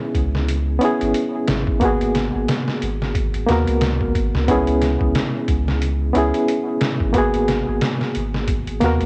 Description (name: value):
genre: trip hop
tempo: 90 BPM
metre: 4/4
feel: swing 58% on 16ths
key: G# minor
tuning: A4 = 440 Hz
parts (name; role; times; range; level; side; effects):
- overdriven reed electric piano; accompaniment; 0.0-9.1 s; A#3 to A#4; -22 LUFS; equal; tremolo, vintage 12-bit sampler grit, tape echo
- trip hop sampler-style drum kit; drums; 0.1-9.1 s; hi-hat, kick drum, snare drum; -25 LUFS; equal; small room ambience, cassette tape
- soft dub sub bass; bass; 0.2-9.1 s; G#1 to D#2; -25 LUFS; equal; none
room: light reverb, digital ambience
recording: home recording on cassette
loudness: -20 LUFS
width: mono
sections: 0.0-9.1 A section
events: none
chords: 0.0 C#m7; 1.8 G#m9; 4.5 C#m7; 7.1 G#m9